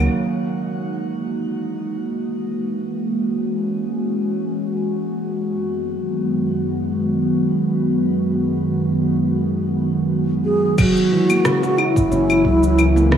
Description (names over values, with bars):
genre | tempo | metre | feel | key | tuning
organic downtempo | 90 BPM | 4/4 | swing 54% on 16ths | F# mixolydian | A4 = 439 Hz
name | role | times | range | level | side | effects
warbly tape-like pad | sustained chords | 0.0-13.2 s | F#2 to F#4 | -20 LUFS | equal | chorus, built-in reverb, sidechain pumping, shimmer reverb
handpan | arpeggios | 0.0-0.1, 10.8-13.2 s | C#3 to F#4 | -21 LUFS | right 2 dB | tape echo, shimmer reverb
smooth synth bass | bass | 0.0-0.1, 12.1-13.2 s | F#1 to C#2 | -18 LUFS | equal | none
mellow hollow bass bansuri | melody | 10.4-13.2 s | D#4 to G#4 | -19 LUFS | equal | tape echo, shimmer reverb
afro-pop drum kit | drums | 10.8-13.2 s | cabasa, claves, crash cymbal, rim click | -24 LUFS | left 2 dB | none
electronic kick drum | drums | 10.8-12.6 s | none | -21 LUFS | right 1 dB | none
room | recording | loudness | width
wet plate reverb, RT60 1.8 s, digital ambience | dreamy mix soaked in reverb, small room ambience | -17 LUFS | side -8 dB against mid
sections
0.1-10.8 A section; 10.8-13.2 B section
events
filter sweep on ambient pad 0.1-10.8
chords
0.1 F#13; 5.5 G#m7/F#; 10.8 F#9